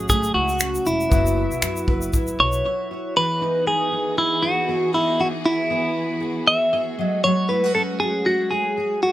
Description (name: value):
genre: acoustic pop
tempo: 118 BPM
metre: 4/4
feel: swing 55% on 16ths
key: E major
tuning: A4 = 439 Hz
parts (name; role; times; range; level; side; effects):
- direct-recorded clean electric guitar; melody; 0.0-9.1 s; E4 to E5; -20 LUFS; equal; phaser, tape echo
- bright grand piano; accompaniment; 0.0-3.2 s; A3 to E5; -33 LUFS; left 6 dB; none
- fingerpicked steel-string acoustic guitar; accompaniment; 0.0-9.1 s; E3 to B4; -27 LUFS; equal; double-tracked left and right
- upright bass; bass; 0.0-2.6 s; E1 to A2; -27 LUFS; equal; none
- natural country drum kit; drums; 0.1-2.6 s; finger snaps, kick drum, shaker; -23 LUFS; equal; none
- rich studio string section; sustained chords; 3.2-9.1 s; E3 to G#4; -32 LUFS; right 1 dB; none
room: light reverb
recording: rough home demo mix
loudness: -18 LUFS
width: side -14 dB against mid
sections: 0.0-3.2 A section; 3.2-9.1 B section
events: break 2.6-3.2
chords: 0.0 F#madd9; 1.1 Bsus4/F#; 3.2 Emaj7; 7.0 F#madd9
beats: 0.10 0.61 | 1.12 1.63 2.14 2.65 | 3.16 3.67 4.18 4.69 | 5.20 5.71 6.22 6.73 | 7.24 7.75 8.26 8.77